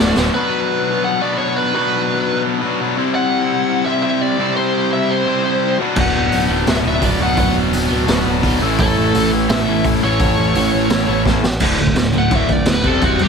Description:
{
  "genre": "punk rock",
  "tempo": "170 BPM",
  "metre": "4/4",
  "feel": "straight",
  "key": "unclear",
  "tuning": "A4 = 439 Hz",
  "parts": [
    { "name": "biting lead guitar", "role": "melody", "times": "0.0-13.3 s", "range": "F#4 to F#5", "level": "-20 LUFS", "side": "left 1 dB", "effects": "overdrive" },
    { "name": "cranked stack guitar", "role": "riff", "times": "0.0-13.3 s", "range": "D2 to C5", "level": "-20 LUFS", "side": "left 12 dB", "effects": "overdrive" },
    { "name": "crunchy overdriven guitar", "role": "riff", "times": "0.0-0.3, 6.0-13.3 s", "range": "D2 to C4", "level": "-22 LUFS", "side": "right 1 dB", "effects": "none" },
    { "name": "overdriven electric guitar", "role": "riff", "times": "0.0-13.3 s", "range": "D2 to C4", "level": "-21 LUFS", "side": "right 15 dB", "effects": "none" },
    { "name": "growling picked electric bass", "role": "bass", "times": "0.0-0.3, 6.0-13.3 s", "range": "D1 to A1", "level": "-21 LUFS", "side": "right 1 dB", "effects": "overdrive" },
    { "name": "raw garage drum kit", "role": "drums", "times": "0.2, 6.0-13.3 s", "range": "crash cymbal, hi-hat, kick drum, snare drum", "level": "-19 LUFS", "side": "right 1 dB", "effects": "none" }
  ],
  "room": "light reverb",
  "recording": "none",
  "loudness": "-14 LUFS",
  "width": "side -6 dB against mid",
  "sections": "0.3-11.6 A section; 11.6-13.3 B section",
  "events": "drum fill 0.0-0.3, 11.3-11.6; half time 0.3-11.6; lead electric guitar solo 11.6-13.3",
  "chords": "0.3 Bm; 3.0 C; 5.8 Bm/D; 8.6 A; 11.6 D5"
}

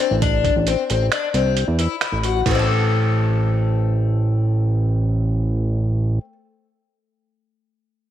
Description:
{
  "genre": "progressive instrumental, band music in an uneven meter",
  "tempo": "134 BPM",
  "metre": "7/4",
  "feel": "straight",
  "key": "A minor",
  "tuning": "A4 = 441 Hz",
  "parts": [
    { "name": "picked twelve-string acoustic guitar", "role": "arpeggios", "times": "0.0-6.3 s", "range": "A3 to A4", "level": "-23 LUFS", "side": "left 10 dB", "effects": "slapback echo" },
    { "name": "fat analog bass", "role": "bass", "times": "0.1-6.2 s", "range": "A1 to E2", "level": "-18 LUFS", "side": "right 1 dB", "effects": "none" },
    { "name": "lo-fi sampler-style drum kit", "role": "drums", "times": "0.2-2.6 s", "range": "finger snaps, hi-hat, kick drum, ride cymbal", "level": "-24 LUFS", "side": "right 5 dB", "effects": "overdrive" }
  ],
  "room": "light reverb",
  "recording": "1960s-style stereo",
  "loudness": "-17 LUFS",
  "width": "side -11 dB against mid",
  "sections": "0.0-2.5 A section; 2.5-5.6 B section",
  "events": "none",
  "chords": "0.0 Am"
}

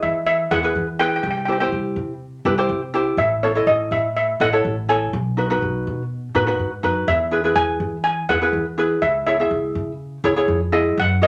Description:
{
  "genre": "calypso",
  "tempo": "123 BPM",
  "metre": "4/4",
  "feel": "straight",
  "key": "E major",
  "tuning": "A4 = 440 Hz",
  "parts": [
    { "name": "steel pan", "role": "melody", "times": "0.0-11.3 s", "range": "C#5 to G#5", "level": "-22 LUFS", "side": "equal", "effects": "none" },
    { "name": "ukulele", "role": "accompaniment", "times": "0.0-11.3 s", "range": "D#4 to E5", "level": "-23 LUFS", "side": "equal", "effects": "none" },
    { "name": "upright bass", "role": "bass", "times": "0.0-11.3 s", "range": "A1 to E3", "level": "-28 LUFS", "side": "equal", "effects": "none" }
  ],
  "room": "wet club reverb, RT60 0.6 s",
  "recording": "none",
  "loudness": "-20 LUFS",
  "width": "mono",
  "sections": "0.0-11.3 A section",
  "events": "none",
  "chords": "0.0 E; 1.2 C; 3.2 A; 5.1 B; 7.1 E; 9.0 C#m"
}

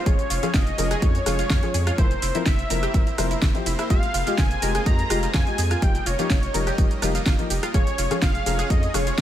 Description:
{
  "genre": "progressive house",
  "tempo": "125 BPM",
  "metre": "4/4",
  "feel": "straight",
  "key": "unclear",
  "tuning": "A4 = 440 Hz",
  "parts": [
    { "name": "wide unison lead", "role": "melody", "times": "0.0-9.2 s", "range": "C5 to Bb5", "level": "-29 LUFS", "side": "equal", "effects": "tape echo" },
    { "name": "supersaw pad", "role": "sustained chords", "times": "0.0-9.2 s", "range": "F3 to Eb5", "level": "-33 LUFS", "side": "equal", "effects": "sidechain pumping" },
    { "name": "wide unison pluck", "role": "arpeggios", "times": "0.0-9.2 s", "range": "Eb4 to C6", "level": "-31 LUFS", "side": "right 1 dB", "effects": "sidechain pumping, dub echo" },
    { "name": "felt-muted upright piano", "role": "stabs", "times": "0.1-9.0 s", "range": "F3 to Bb4", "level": "-29 LUFS", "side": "left 5 dB", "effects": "sidechain pumping" },
    { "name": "saturated sub bass", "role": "bass", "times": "0.1-9.2 s", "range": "F1 to F2", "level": "-27 LUFS", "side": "equal", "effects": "sidechain pumping" },
    { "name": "deep house drum kit", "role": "drums", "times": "0.1-9.2 s", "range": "hi-hat, rim click, shaker, snare drum", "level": "-28 LUFS", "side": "right 1 dB", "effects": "overdrive, sidechain pumping on hats, small room ambience, sidechain pumping on cymbals, sidechain pumping on perc" },
    { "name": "electronic kick drum", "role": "drums", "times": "0.1-9.2 s", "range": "none", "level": "-21 LUFS", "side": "equal", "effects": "small room ambience" }
  ],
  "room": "little or no reverb",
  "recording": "none",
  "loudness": "-19 LUFS",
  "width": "side -11 dB against mid",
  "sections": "0.0-9.2 A section",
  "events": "none",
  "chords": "0.1 Db/F; 2.0 C7/F; 3.9 Fmadd9; 5.8 Eb/F; 7.7 Db/F"
}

